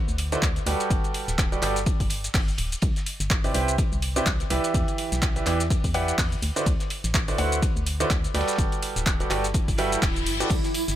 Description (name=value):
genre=piano house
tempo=125 BPM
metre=4/4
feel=swing 57% on 16ths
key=G major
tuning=A4 = 441 Hz
part: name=organ-like FM bass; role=bass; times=0.1-11.0 s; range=D1 to E2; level=-29 LUFS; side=equal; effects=sidechain pumping
part: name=punchy analog drum machine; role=drums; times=0.1-11.0 s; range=crash cymbal, handclaps, hi-hat, shaker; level=-30 LUFS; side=equal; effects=none
part: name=cloth-damped thuddy drum kit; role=drums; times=0.2-11.0 s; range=hi-hat, ride cymbal, snare drum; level=-40 LUFS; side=right 2 dB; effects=none
part: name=clear grand piano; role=riff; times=0.3-10.5 s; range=C3 to G5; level=-27 LUFS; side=right 2 dB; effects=sidechain pumping, ping-pong delay
part: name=electronic kick drum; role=drums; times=0.4-10.6 s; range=none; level=-25 LUFS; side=equal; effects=none
part: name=granular cloud pad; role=texture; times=9.7-11.0 s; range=E4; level=-32 LUFS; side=right 1 dB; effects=built-in reverb, sidechain pumping
part: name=reverse cymbal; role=sound effects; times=9.8-10.5 s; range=none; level=-34 LUFS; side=left 5 dB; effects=none
part: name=tambourine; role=percussion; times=10.5-11.0 s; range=none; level=-36 LUFS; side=equal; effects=none
room=studio reverb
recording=none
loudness=-22 LUFS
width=side -12 dB against mid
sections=0.0-11.0 A section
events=reverse cymbal 9.8-10.5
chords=0.0 D6; 0.9 Gmaj9; 2.8 Cmaj9; 4.7 Em7; 6.4 D13; 8.6 Gmaj9